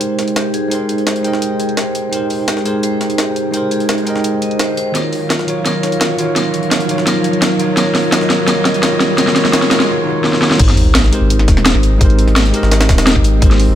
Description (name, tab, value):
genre	liquid drum and bass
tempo	170 BPM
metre	4/4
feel	straight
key	Ab major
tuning	A4 = 440 Hz
part	bell-like tine electric piano	accompaniment	0.0-13.8 s	Eb3 to G5	-18 LUFS	right 1 dB	ping-pong delay
part	airy breathy pad	sustained chords	0.0-13.8 s	Gb3 to G5	-22 LUFS	right 2 dB	chorus, sidechain pumping
part	vibraphone with hard mallets	arpeggios	0.0-10.6 s	F4 to Eb5	-21 LUFS	left 2 dB	vintage 12-bit sampler grit, low-pass filter, ping-pong delay
part	drum and bass drum kit	drums	0.0-13.7 s	crash cymbal, hi-hat, snare drum	-17 LUFS	equal	none
part	jungle sampler-style drum kit	drums	0.0-13.7 s	hi-hat, snare drum	-21 LUFS	left 1 dB	high-pass filter on hats, high-pass filter on snare
part	riser and sub drop	sound effects	1.8-12.0 s	none	-23 LUFS	equal	none
part	warm sub bass	bass	10.6-13.8 s	Eb1 to Ab1	-12 LUFS	equal	none
part	electronic kick drum	drums	10.6-13.5 s	none	-12 LUFS	equal	none
room	light reverb, digital ambience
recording	none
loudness	-12 LUFS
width	side -11 dB against mid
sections	0.0-10.6 A section; 10.6-13.8 B section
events	build-up 0.0-10.6; filter sweep on analog synth pad 0.0-10.6; filter sweep on vibraphone 0.0-10.6; drum fill 5.0-9.9, 10.2-10.6; break 9.9-10.6; drop 10.6-13.8; impact 10.6-12.0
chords	0.0 Abmaj7; 5.0 Ebm9; 10.6 Abmaj7